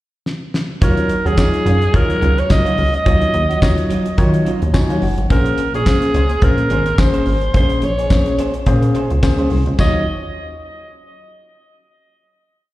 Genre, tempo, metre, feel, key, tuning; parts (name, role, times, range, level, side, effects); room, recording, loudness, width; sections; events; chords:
early-eighties boogie funk; 107 BPM; 4/4; swing 56% on 16ths; Eb minor; A4 = 445 Hz
damped 70s drum kit; drums; 0.3-9.9 s; crash cymbal, handclaps, hi-hat, kick drum, snare drum; -17 LUFS; equal
growling alto saxophone; melody; 0.8-10.1 s; Ab4 to Eb5; -21 LUFS; right 1 dB; slapback echo, tape echo
tine electric piano; accompaniment; 0.8-10.1 s; Gb3 to Ab5; -21 LUFS; left 2 dB; medium stereo tremolo, slapback echo
electric guitar at the edge of break-up; riff; 0.8-10.0 s; Gb3 to Db5; -26 LUFS; right 4 dB; wide subtle chorus, slapback echo
plucky analog bass; bass; 0.8-10.0 s; Gb1 to Eb3; -17 LUFS; equal
tambourine; percussion; 1.4-10.1 s; -39 LUFS; left 3 dB
light reverb; live gig heard through the venue's PA, recital hall reverb; -13 LUFS; side -16 dB against mid
0.0-0.8 pickup bar; 0.8-9.8 verse; 9.8-12.0 final chord
drum fill 0.3-0.8; tine electric piano fill 4.5-5.3
0.0 N.C.; 0.8 Ebm9; 5.3 Bbm9; 9.8 Ebm9